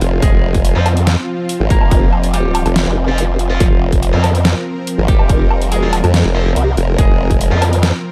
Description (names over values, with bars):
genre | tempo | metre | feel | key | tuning
heavy wobble dubstep | 142 BPM | 4/4 | half-time | F minor | A4 = 441 Hz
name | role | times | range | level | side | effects
supersaw pad | sustained chords | 0.0-8.1 s | F3 to Bb4 | -24 LUFS | equal | vintage 12-bit sampler grit, sidechain pumping
formant-sweep wobble bass | bass | 0.0-7.5 s | F1 to F2 | -17 LUFS | equal | chorus, overdrive
dubstep drum kit | drums | 0.0-7.9 s | hi-hat, snare drum, woodblock | -22 LUFS | equal | overdrive
semi-hollow electric guitar | melody | 0.2-7.5 s | F3 to Bb4 | -27 LUFS | equal | delay
electronic kick drum | drums | 0.2-7.4 s | none | -16 LUFS | equal | none
heavy high-gain guitar | stabs | 0.8-7.6 s | F3 to F4 | -27 LUFS | equal | distortion, delay
formant-sweep wobble bass | bass | 0.8-7.9 s | F1 to F2 | -17 LUFS | equal | chorus, overdrive
room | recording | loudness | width
little or no reverb | dark, warm production | -14 LUFS | mono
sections
0.0-8.1 A section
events
none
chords
0.0 Fm